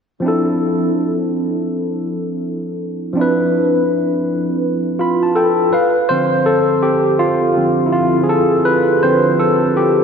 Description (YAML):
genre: R&B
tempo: 82 BPM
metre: 4/4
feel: swing 61% on 16ths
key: D dorian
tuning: A4 = 440 Hz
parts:
  - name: barky tine electric piano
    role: solo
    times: 0.2-10.0 s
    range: D3 to B5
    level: -14 LUFS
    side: equal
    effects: overdrive, phaser
room: wet lush hall reverb, RT60 2.6 s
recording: dreamy mix soaked in reverb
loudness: -14 LUFS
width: side -6 dB against mid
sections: 0.2-6.1 A section; 6.1-10.0 B section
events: tine electric piano fill 4.6-6.1; tine electric piano solo 6.1-10.0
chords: 0.2 Dm7; 5.7 N.C.; 6.1 Dm7